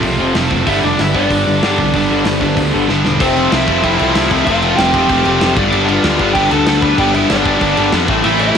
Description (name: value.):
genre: punk rock.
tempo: 190 BPM.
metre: 4/4.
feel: straight.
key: unclear.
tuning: A4 = 440 Hz.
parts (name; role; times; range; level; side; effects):
crunchy overdriven guitar; riff; 0.0-8.6 s; F2 to E4; -15 LUFS; equal; none.
distorted electric guitar; riff; 0.0-3.2, 8.2-8.6 s; F2 to A3; -22 LUFS; right 8 dB; distortion.
raw garage guitar; riff; 0.0-8.6 s; F2 to A3; -19 LUFS; left 9 dB; overdrive.
fuzz picked electric bass; bass; 0.0-8.5 s; E1 to G2; -21 LUFS; equal; overdrive.
big rock drum kit; drums; 0.0-8.6 s; crash cymbal, hi-hat, kick drum, snare drum; -20 LUFS; equal; cassette tape.
raw garage guitar; melody; 0.7-8.6 s; C4 to B5; -17 LUFS; right 2 dB; overdrive.
room: light reverb.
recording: home recording on cassette.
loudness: -11 LUFS.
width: side -7 dB against mid.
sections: 0.0-3.2 A section; 3.2-8.6 B section.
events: drum fill 2.9-3.2.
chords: 0.0 F; 0.7 G; 3.2 F; 5.6 G.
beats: 0.04 0.35 | 0.67 0.99 1.31 1.62 | 1.94 2.26 2.57 2.89 | 3.21 3.52 3.84 4.15 | 4.47 4.78 5.10 5.41 | 5.73 6.04 6.36 6.67 | 6.98 7.30 7.61 7.92 | 8.24 8.55.